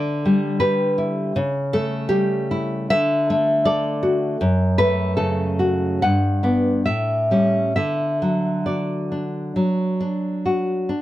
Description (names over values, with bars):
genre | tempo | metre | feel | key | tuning
romantic piece for solo classical guitar | 65-83 BPM | 4/4 | rubato | D major | A4 = 440 Hz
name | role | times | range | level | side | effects
nylon-string guitar | solo | 0.0-11.0 s | F#2 to F#5 | -18 LUFS | equal | none
room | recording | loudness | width
light reverb | none | -18 LUFS | side -14 dB against mid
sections
0.0-11.0 A section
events
none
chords
0.0 Em7/D; 1.4 A7/C#; 2.9 D; 4.4 F#m; 6.0 G; 6.9 A7; 7.8 D